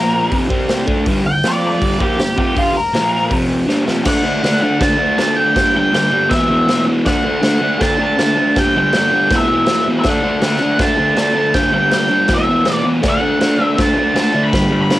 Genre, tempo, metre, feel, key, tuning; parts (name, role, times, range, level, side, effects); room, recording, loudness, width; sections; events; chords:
garage rock duo or trio; 160 BPM; 4/4; straight; A4 = 435 Hz
octave-fuzz lead guitar; melody; 0.0-15.0 s; F4 to B5; -17 LUFS; equal; distortion, cassette tape
crunchy overdriven guitar; riff; 0.0-15.0 s; E2 to F4; -16 LUFS; equal; cassette tape
raw garage drum kit; drums; 0.3-15.0 s; crash cymbal, hi-hat, kick drum, snare drum; -19 LUFS; equal; cassette tape
little or no reverb; home recording on cassette; -12 LUFS; side -15 dB against mid
0.0-4.1 A section; 4.1-15.0 B section
lead electric guitar solo 0.0-4.1; drum fill 3.7-4.1
0.3 F5; 0.5 C5; 0.9 G5; 1.4 F5; 1.8 G5; 2.9 Bb5; 3.3 F5; 3.7 G5; 4.1 D; 5.6 G5; 6.3 E5; 7.1 D; 8.6 G5; 9.3 E5; 10.1 D; 11.5 G5; 12.3 E5; 13.0 D